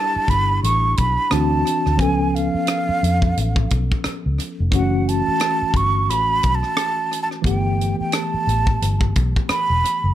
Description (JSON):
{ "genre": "R&B, neo-soul", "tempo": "88 BPM", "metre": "4/4", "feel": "swing 59% on 16ths", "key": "unclear", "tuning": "A4 = 440 Hz", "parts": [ { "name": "breathy concert flute", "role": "melody", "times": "0.0-10.1 s", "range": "E#5 to C#6", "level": "-21 LUFS", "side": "right 3 dB", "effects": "slapback echo, plate reverb" }, { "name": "tine electric piano", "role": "accompaniment", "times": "0.0-10.1 s", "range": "E3 to A4", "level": "-24 LUFS", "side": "left 2 dB", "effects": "overdrive, fast stereo tremolo" }, { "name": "vintage muted fingered electric bass", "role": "bass", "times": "0.2-10.1 s", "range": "E1 to E#2", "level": "-21 LUFS", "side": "equal", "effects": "none" }, { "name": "tight funk drum kit", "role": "drums", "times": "0.3-10.0 s", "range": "hi-hat, kick drum, rim click", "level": "-22 LUFS", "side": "equal", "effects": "none" } ], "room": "light reverb", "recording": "none", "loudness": "-17 LUFS", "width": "side -12 dB against mid", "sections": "0.0-10.1 A section", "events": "none", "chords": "0.0 Em7; 1.3 D9; 2.0 C#7b13; 4.7 F#m7; 7.4 G69", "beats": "0.63 1.31 | 1.99 2.67 3.35 4.04 | 4.72 5.40 6.08 6.76 | 7.45 8.13 8.81 9.49" }